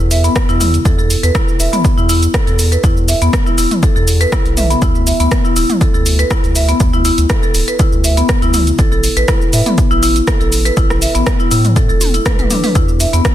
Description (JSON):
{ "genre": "afro house", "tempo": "121 BPM", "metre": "4/4", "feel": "swing 53% on 16ths", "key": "unclear", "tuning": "A4 = 440 Hz", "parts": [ { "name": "round analog bass", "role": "bass", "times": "0.0-13.2 s", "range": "D1 to A2", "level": "-15 LUFS", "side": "equal", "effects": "sidechain pumping" }, { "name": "deep house drum kit", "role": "drums", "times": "0.0-13.3 s", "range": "hi-hat, rim click, shaker, toms", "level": "-18 LUFS", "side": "equal", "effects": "overdrive, studio reverb" }, { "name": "marimba with medium hard mallets", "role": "arpeggios", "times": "0.1-13.2 s", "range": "B3 to E5", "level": "-16 LUFS", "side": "left 1 dB", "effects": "sidechain pumping, tape echo" }, { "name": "electronic kick drum", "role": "drums", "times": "0.4-13.3 s", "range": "none", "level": "-15 LUFS", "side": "equal", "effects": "overdrive, studio reverb" } ], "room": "little or no reverb", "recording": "dense, heavily limited modern master", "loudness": "-10 LUFS", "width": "side -12 dB against mid", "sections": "0.0-13.3 A section", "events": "drum fill 12.0-12.8", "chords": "0.0 E5; 4.8 D5; 8.8 A5; 12.8 E5" }